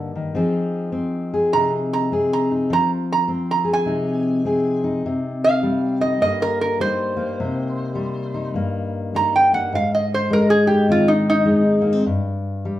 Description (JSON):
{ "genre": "acoustic country blues, solo or duo", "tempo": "103 BPM", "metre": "4/4", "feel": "swing 63% on 8ths", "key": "C minor", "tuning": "A4 = 440 Hz", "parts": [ { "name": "fingerpicked steel-string acoustic guitar", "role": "accompaniment", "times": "0.0-12.8 s", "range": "G2 to Ab4", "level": "-20 LUFS", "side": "left 2 dB", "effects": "none" }, { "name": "metal-body resonator slide guitar", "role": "melody", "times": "1.5-12.0 s", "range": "Eb4 to Bb5", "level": "-20 LUFS", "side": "right 2 dB", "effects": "none" } ], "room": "moderate large studio reverb, RT60 0.9 s", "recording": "band playing live in one room", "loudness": "-17 LUFS", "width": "side -14 dB against mid", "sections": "0.0-12.8 A section", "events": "resonator guitar played with a steel bar solo 0.0-12.8", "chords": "0.4 Fm7; 5.0 Cm7; 9.7 Ab; 12.1 N.C.", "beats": "| 0.36 0.94 1.53 2.12 | 2.70 3.29 3.87 4.46 | 5.04 5.62 6.21 6.79 | 7.38 7.96 8.54 9.13 | 9.71 10.30 10.88 11.47 | 12.05 12.63" }